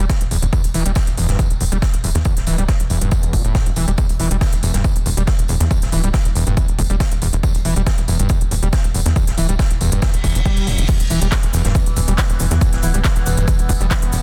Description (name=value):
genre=driving peak-time techno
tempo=139 BPM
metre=4/4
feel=straight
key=E minor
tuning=A4 = 440 Hz
part: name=screaming distorted acid line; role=riff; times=0.0-14.2 s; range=E2 to G3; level=-25 LUFS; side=equal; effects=distortion, analog chorus, sidechain pumping, dub echo
part: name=tight sequencer bass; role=bass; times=0.0-14.2 s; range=D1 to E2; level=-21 LUFS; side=equal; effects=tube saturation, sidechain pumping
part: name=electronic kick drum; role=drums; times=0.1-14.0 s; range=none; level=-20 LUFS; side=equal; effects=none
part: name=swinging big-band drum kit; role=drums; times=0.1-14.2 s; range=hi-hat, snare drum, tambourine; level=-35 LUFS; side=equal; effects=sidechain pumping on hats, high-pass filter on hats, high-pass filter on snare, sidechain pumping on perc, high-pass filter on perc, high-pass filter on room
part: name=techno drum kit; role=drums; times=0.1-14.2 s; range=crash cymbal, handclaps, hi-hat, ride cymbal, shaker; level=-28 LUFS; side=equal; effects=sidechain pumping on hats, sidechain pumping on cymbals, sidechain pumping on perc
part: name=reverse cymbal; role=sound effects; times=10.1-10.9 s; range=none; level=-31 LUFS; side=equal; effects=none
part: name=overtone-sweeping drone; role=drone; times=11.3-14.2 s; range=E3 to B3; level=-31 LUFS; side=equal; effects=chorus, built-in reverb, sidechain pumping
room=little or no reverb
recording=dense, heavily limited modern master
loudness=-17 LUFS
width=mono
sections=0.0-10.9 A section; 10.9-14.2 B section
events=reverse cymbal 10.1-10.9; drop 10.9-14.2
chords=0.0 Em; 10.9 E5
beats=0.10 | 0.53 0.96 1.39 1.82 | 2.25 2.69 3.12 3.55 | 3.98 4.41 4.84 5.28 | 5.71 6.14 6.57 7.00 | 7.43 7.87 8.30 8.73 | 9.16 9.59 10.02 10.46 | 10.89 11.32 11.75 12.18 | 12.61 13.04 13.48 13.91